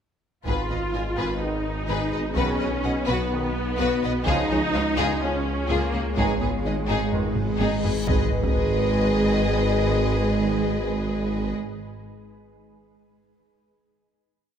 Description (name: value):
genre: cinematic, hybrid orchestral and electronic film score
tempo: 126 BPM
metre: 4/4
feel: straight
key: G# dorian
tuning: A4 = 440 Hz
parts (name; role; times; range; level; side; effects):
- rich symphonic violin section; melody; 0.5-11.5 s; G#4 to G#5; -32 LUFS; left 5 dB; none
- warm symphonic violin section; second line; 0.5-11.5 s; D#4 to D#5; -31 LUFS; left 3 dB; none
- warm symphonic viola section; accompaniment; 0.5-11.5 s; G#3 to G#4; -31 LUFS; right 1 dB; none
- bright trombone section; sustained chords; 0.5-11.2 s; D#3 to B3; -37 LUFS; right 3 dB; none
- granular cloud pad; sustained chords; 1.7-11.2 s; G#3 to C#5; -32 LUFS; left 1 dB; built-in reverb
- mellow French horn section; sustained chords; 0.5-11.2 s; F#4 to C#5; -32 LUFS; left 6 dB; none
- harp-like synth pluck; arpeggios; 0.5-8.0 s; C#3 to B4; -34 LUFS; right 2 dB; chorus, tape echo
- clear tuba; bass; 0.5-11.5 s; G#1 to C#2; -34 LUFS; right 5 dB; none
- swelling detuned saw bass; bass; 0.5-11.5 s; G#1 to C#2; -31 LUFS; equal; none
- warm symphonic cello section; bass; 0.5-11.5 s; G#3 to E#4; -29 LUFS; right 2 dB; none
- warm symphonic double bass section; bass; 0.5-11.5 s; G#1 to C#2; -30 LUFS; right 2 dB; none
- taiko ensemble; drums; 0.5-9.0 s; none; -29 LUFS; equal; none
- reverse cymbal and impact; sound effects; 7.8-10.0 s; none; -32 LUFS; left 1 dB; none
room: moderate scoring stage reverb, RT60 2.0 s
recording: none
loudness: -21 LUFS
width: side -8 dB against mid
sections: 0.5-8.1 theme; 8.1-11.9 final chord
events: drum fill 7.4-8.1; reverse cymbal 7.8-8.1; impact 8.1-10.0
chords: 0.5 G#m; 2.4 B; 4.3 C#; 6.2 G#m